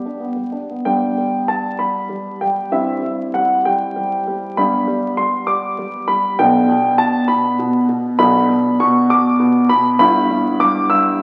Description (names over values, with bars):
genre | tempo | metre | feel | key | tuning
classical-period piano sonatina | 66 BPM (dotted quarters) | 6/8 | rubato | G major | A4 = 440 Hz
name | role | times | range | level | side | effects
warm baby grand piano | solo | 0.0-11.2 s | G1 to E6 | -17 LUFS | equal | none
room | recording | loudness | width
wet recital hall reverb, RT60 1.4 s | very old 78 rpm record, vinyl crackle | -17 LUFS | mono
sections
0.9-11.2 A section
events
none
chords
0.0 G; 2.7 C/G; 4.6 G; 6.4 G/B; 10.0 Em/G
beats
| 0.88 1.81 | 2.73 3.65 | 4.58 5.48 | 6.39 7.29 | 8.19 9.09 | 9.99 10.90